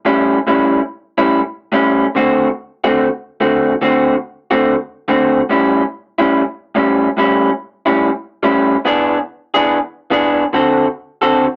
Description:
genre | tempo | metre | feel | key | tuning
blues | 143 BPM | 4/4 | swing 66% on 8ths | A mixolydian | A4 = 441 Hz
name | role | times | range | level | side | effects
electric guitar through a small old amp | solo | 0.1-11.5 s | A2 to A4 | -14 LUFS | equal | none
room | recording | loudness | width
moderate small room reverb, RT60 0.5 s | nothing above 10.5 kHz | -15 LUFS | mono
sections
0.0-11.6 A section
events
none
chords
0.0 A7; 2.2 D7; 5.5 A7; 8.9 E7; 10.5 D7

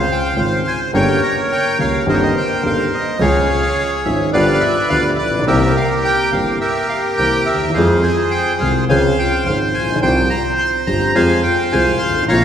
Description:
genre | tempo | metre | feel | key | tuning
tango | 106 BPM | 4/4 | rubato | F harmonic minor | A4 = 439 Hz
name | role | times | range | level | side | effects
bandoneon | melody | 0.0-12.4 s | G4 to C6 | -16 LUFS | equal | none
dark concert grand piano | accompaniment | 0.0-12.4 s | G1 to Ab4 | -18 LUFS | equal | none
clear double bass | bass | 0.0-12.4 s | G1 to F2 | -23 LUFS | right 1 dB | none
room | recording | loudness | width
wet concert hall reverb, RT60 2.5 s | recorded in a church or concert hall | -14 LUFS | side -9 dB against mid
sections
0.0-12.4 A section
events
none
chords
0.0 Dbmaj7; 0.9 Gdim; 2.1 Cm7/G; 3.2 Db; 4.3 G7; 5.5 C7; 7.7 Fm; 8.9 Dbmaj7; 10.0 Csus4; 11.2 Fm

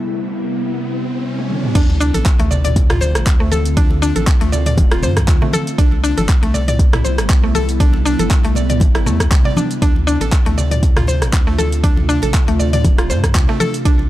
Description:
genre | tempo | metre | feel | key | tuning
afro house | 119 BPM | 4/4 | swing 55% on 16ths | D dorian | A4 = 439 Hz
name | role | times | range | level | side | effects
ethereal airy pad | sustained chords | 0.0-14.1 s | C3 to F4 | -23 LUFS | equal | ensemble chorus, built-in reverb, sidechain pumping
riser and sub drop | sound effects | 0.0-3.8 s | none | -26 LUFS | equal | none
deep house drum kit | drums | 1.4-14.0 s | crash cymbal, handclaps, hi-hat, rim click, shaker, toms | -22 LUFS | right 1 dB | none
mallet-like synth pluck | arpeggios | 1.8-14.0 s | A3 to D5 | -21 LUFS | left 1 dB | chorus, sidechain pumping, tape echo
warm sub bass | bass | 1.8-14.1 s | D1 to G2 | -18 LUFS | equal | tube saturation, sidechain pumping
electronic kick drum | drums | 1.8-14.0 s | none | -14 LUFS | equal | none
congas | percussion | 1.8-14.1 s | none | -25 LUFS | left 1 dB | none
room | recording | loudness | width
little or no reverb | dry, gritty hardware recording | -13 LUFS | side -15 dB against mid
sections
0.0-1.8 A section; 1.8-14.1 B section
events
break 0.0-1.8; riser 0.0-1.8; drum fill 1.4-1.8; drop 1.8-14.1; impact 1.8-3.8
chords
0.0 Cmaj7; 1.8 Dm7; 5.8 Cmaj7; 9.8 Dm7

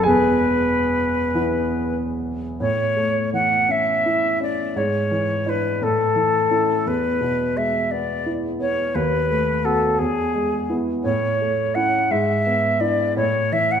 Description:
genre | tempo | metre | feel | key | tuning
classical, romantic duo for flute and grand piano | 46-59 BPM (dotted quarters) | 6/8 | rubato | A major | A4 = 440 Hz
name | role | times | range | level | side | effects
silver concert flute | melody | 0.0-13.8 s | G#4 to F#5 | -20 LUFS | left 1 dB | none
warm grand piano | accompaniment | 0.0-13.8 s | E1 to G#5 | -22 LUFS | right 1 dB | none
room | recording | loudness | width
wet recital hall reverb, RT60 1.4 s | none | -18 LUFS | side -8 dB against mid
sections
0.0-2.6 A section; 2.6-13.8 B section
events
none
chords
0.1 E; 2.6 A; 4.8 E7/G#; 5.8 A; 6.9 E; 9.0 B7/D#; 10.0 E; 11.1 A; 12.1 E7/G#; 13.2 A

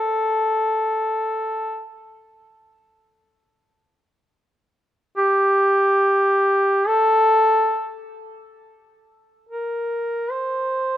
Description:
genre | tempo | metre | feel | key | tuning
caucasian folk | free time | none | none | A phrygian | A4 = 440 Hz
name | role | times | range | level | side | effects
warm duduk | solo | 0.0-11.0 s | G4 to C5 | -18 LUFS | equal | none
room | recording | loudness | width
light reverb | rough home demo mix | -17 LUFS | side -12 dB against mid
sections
0.0-8.3 A section; 8.3-11.0 A section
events
none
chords
none

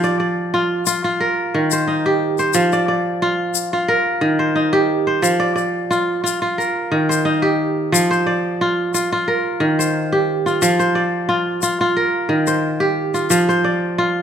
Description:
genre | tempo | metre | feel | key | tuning
west african traditional, West African string and xylophone music | 89 BPM | 4/4 | swing 54% on 16ths | unclear | A4 = 443 Hz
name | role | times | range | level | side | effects
kora | arpeggios | 0.0-14.2 s | Eb3 to D5 | -16 LUFS | right 1 dB | none
egg shaker | percussion | 0.0-13.6 s | none | -23 LUFS | left 12 dB | none
room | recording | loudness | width
moderate recital hall reverb, RT60 1.7 s | minimal, uncompressed stereo recording | -16 LUFS | side -8 dB against mid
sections
0.0-7.9 A section; 7.9-14.2 B section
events
none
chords
0.0 F5; 1.2 Eb; 2.5 F5; 3.9 Eb; 5.2 F5; 6.6 Eb; 7.9 F5; 9.3 Eb; 10.6 F5; 12.0 Eb; 13.3 F5

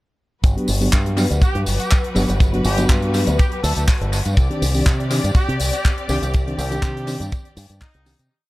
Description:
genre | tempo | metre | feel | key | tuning
nu-disco, nu disco | 122 BPM | 4/4 | swing 53% on 16ths | G major | A4 = 440 Hz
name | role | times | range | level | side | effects
dark studio string section | sustained chords | 0.4-8.3 s | F#3 to D5 | -28 LUFS | left 2 dB | sidechain pumping
fingered electric bass with an envelope filter | bass | 0.4-8.3 s | G1 to C3 | -21 LUFS | equal | none
kick drum | drums | 0.4-7.9 s | none | -16 LUFS | equal | studio reverb
tight funk drum kit | drums | 0.4-8.3 s | handclaps, hi-hat | -27 LUFS | left 2 dB | studio reverb, analog delay
tambourine | percussion | 0.4-8.3 s | none | -32 LUFS | right 2 dB | analog delay
mellow reed electric piano | accompaniment | 0.6-8.2 s | Eb3 to G4 | -24 LUFS | equal | fast tremolo, sidechain pumping, analog delay
clear trumpet section | melody | 1.4-8.2 s | Eb4 to A4 | -30 LUFS | equal | tape echo
room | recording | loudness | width
light reverb, small room ambience | echo-heavy mix | -16 LUFS | side -19 dB against mid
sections
0.4-8.3 drop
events
drop 0.4-8.3; fade-out 5.7-8.3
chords
0.4 Gmaj7; 4.4 Cmadd9

